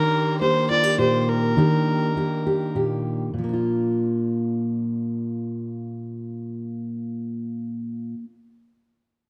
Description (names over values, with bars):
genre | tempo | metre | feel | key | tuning
folk | 102 BPM | 3/4 | straight | Bb major | A4 = 440 Hz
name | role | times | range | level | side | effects
warm fiddle | melody | 0.0-2.8 s | Bb4 to D5 | -25 LUFS | equal | none
fingerpicked steel-string acoustic guitar | accompaniment | 0.0-8.3 s | Bb2 to G4 | -25 LUFS | equal | none
room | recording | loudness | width
light reverb, small room ambience | dark, warm production | -24 LUFS | mono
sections
0.0-3.3 A section; 3.3-6.9 B section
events
none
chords
0.0 Ebmaj7; 3.3 Bb